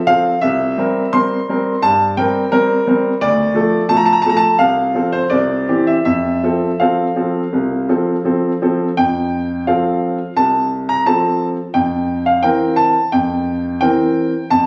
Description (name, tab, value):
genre	classical-period piano sonatina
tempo	86 BPM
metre	4/4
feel	rubato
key	F major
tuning	A4 = 442 Hz
part	bright grand piano	solo	0.0-14.7 s	C2 to C6	-16 LUFS	equal	none
room	moderate recital hall reverb, RT60 1.6 s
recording	recorded on a phone in the room, studio reverb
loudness	-16 LUFS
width	mono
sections	0.0-9.0 A section; 9.0-14.7 B section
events	none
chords	0.4 C7; 3.2 Dm; 4.6 F/C; 5.3 C; 6.1 F; 11.7 C7/F